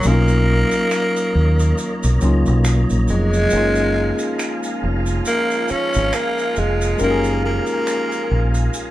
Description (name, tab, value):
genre	R&B, neo-soul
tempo	69 BPM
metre	4/4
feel	swing 58% on 16ths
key	F# major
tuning	A4 = 440 Hz
part	growling tenor saxophone	melody	0.0-8.7 s	G#3 to C#4	-20 LUFS	equal	none
part	barky tine electric piano	accompaniment	0.0-8.9 s	F#3 to A#4	-23 LUFS	left 2 dB	none
part	tonewheel organ	sustained chords	0.0-8.9 s	A#3 to A#5	-29 LUFS	right 1 dB	slow rotary speaker, chorus vibrato
part	maracas and finger snaps	percussion	0.0-8.9 s	none	-31 LUFS	right 2 dB	none
part	deep dub fingered electric bass	bass	0.1-8.7 s	E#1 to D#2	-18 LUFS	equal	none
part	mellow horn section	stabs	3.5-8.9 s	E#3 to E#4	-27 LUFS	right 6 dB	none
room	light reverb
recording	band playing live in one room, vinyl crackle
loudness	-16 LUFS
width	side -15 dB against mid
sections	0.0-8.9 A section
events	none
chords	0.0 Bmaj9; 3.5 F#maj9